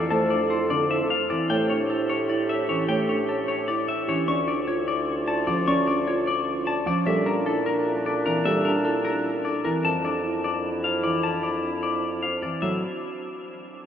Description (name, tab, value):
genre	classical, minimalist pattern music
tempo	302 BPM (eighths)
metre	7/8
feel	straight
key	unclear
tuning	A4 = 440 Hz
part	clean electric guitar	melody	0.0-12.8 s	A4 to C#6	-27 LUFS	left 5 dB	none
part	clear clarinet	second line	0.0-12.4 s	D4 to A4	-32 LUFS	right 1 dB	none
part	warm concert grand piano	accompaniment	0.0-12.8 s	D3 to C#4	-30 LUFS	right 1 dB	none
part	marimba with soft mallets	arpeggios	0.0-12.8 s	C4 to D5	-28 LUFS	right 3 dB	none
part	dark bassoon	bass	0.0-12.8 s	D2 to Bb2	-30 LUFS	equal	none
room	wet huge ambient reverb, RT60 7.8 s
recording	in a vast, echoing space, nothing above 7.9 kHz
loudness	-22 LUFS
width	side -9 dB against mid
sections	0.0-12.6 A section; 12.6-13.9 B section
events	none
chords	0.0 Fmaj7; 1.5 A7sus4; 4.3 Dm; 7.1 Bbmaj9#11; 9.8 Fmaj7(no3); 12.6 A5